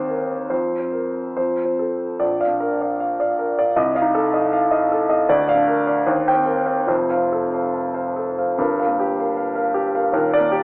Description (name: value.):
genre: classical, romantic character piece for solo piano.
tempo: 69-82 BPM.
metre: 2/4.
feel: rubato.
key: Bb major.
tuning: A4 = 440 Hz.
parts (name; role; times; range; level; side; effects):
warm grand piano; solo; 0.0-10.6 s; Eb1 to G5; -17 LUFS; equal; none.
room: moderate recital hall reverb, RT60 1.5 s.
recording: telephone sound.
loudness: -17 LUFS.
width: side -27 dB against mid.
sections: 0.0-2.2 A section; 2.2-10.6 B section.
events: none.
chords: 0.0 Cm7/Eb; 0.5 Fsus4; 1.4 F; 2.2 Bb; 3.8 F7/C; 5.3 Bb/D; 6.1 Eb6; 6.9 F; 8.6 Gm7.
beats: | 0.51 1.37 | 2.21 3.00 | 3.76 4.52 | 5.28 6.07 | 6.88 7.74 | 8.59 9.38 | 10.15.